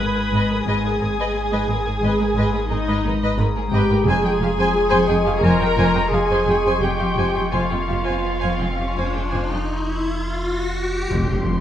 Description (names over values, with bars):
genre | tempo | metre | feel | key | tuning
cinematic | 86 BPM | 5/4 | uneven beats | unclear | A4 = 440 Hz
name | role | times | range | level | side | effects
muted chamber violin section | melody | 0.0-9.7 s | Eb5 to Cb6 | -29 LUFS | left 1 dB | none
muted chamber violin section | second line | 0.0-9.6 s | G4 to Ab5 | -26 LUFS | equal | none
muted studio viola section | accompaniment | 0.0-11.6 s | G3 to Cb5 | -23 LUFS | equal | none
Celtic harp | riff | 0.0-11.6 s | F2 to Ab3 | -27 LUFS | left 5 dB | none
muted chamber cello section | bass | 0.0-11.6 s | F2 to Ab2 | -26 LUFS | right 2 dB | none
muted chamber double bass section | bass | 0.0-11.6 s | F1 to Ab1 | -25 LUFS | right 2 dB | none
pure sine sub bass | drone | 0.0-11.6 s | F1 to Ab1 | -28 LUFS | equal | none
muted chamber violin section | texture | 0.0-11.6 s | C6 to Ab6 | -32 LUFS | left 2 dB | none
vibraphone with medium hard mallets | texture | 0.0-11.1 s | Ab4 to Bb5 | -34 LUFS | left 2 dB | none
riser and impact | sound effects | 7.0-11.6 s | none | -28 LUFS | equal | none
timpani | percussion | 11.1-11.6 s | F2 | -23 LUFS | equal | none
room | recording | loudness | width
moderate scoring stage reverb, RT60 1.6 s | close, detailed microphones | -18 LUFS | side -10 dB against mid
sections
0.0-11.1 A section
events
riser 7.0-11.1; impact 11.1-11.6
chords
0.0 Abmadd9; 4.1 Fmadd9